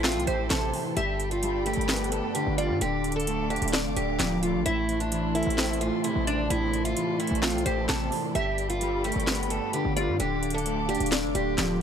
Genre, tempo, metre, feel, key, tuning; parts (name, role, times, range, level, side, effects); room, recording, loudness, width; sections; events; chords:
hip hop, trap; 130 BPM; 4/4; half-time; A minor; A4 = 440 Hz
picked steel-string acoustic guitar; melody; 0.0-11.8 s; D4 to A4; -30 LUFS; right 1 dB; low-pass filter, digital delay
electric guitar at the edge of break-up; accompaniment; 0.0-11.8 s; G2 to D5; -29 LUFS; equal; ensemble chorus, low-pass filter
muted studio string section; sustained chords; 0.0-11.8 s; A4 to D6; -37 LUFS; left 1 dB
hard-hitting 808-style bass; bass; 0.0-11.8 s; D1 to G2; -31 LUFS; equal
trap drum kit; drums; 0.0-11.7 s; handclaps, hi-hat, snare drum; -30 LUFS; equal; overdrive
glassy wavetable pluck; second line; 0.3-10.2 s; C5 to E5; -35 LUFS; equal; chorus, digital delay
digital ambience; -24 LUFS; side -8 dB against mid
0.0-11.8 A section
0.0 Am; 1.0 Gadd9; 2.8 Dm; 4.7 Am; 8.3 Gadd9; 10.2 Dm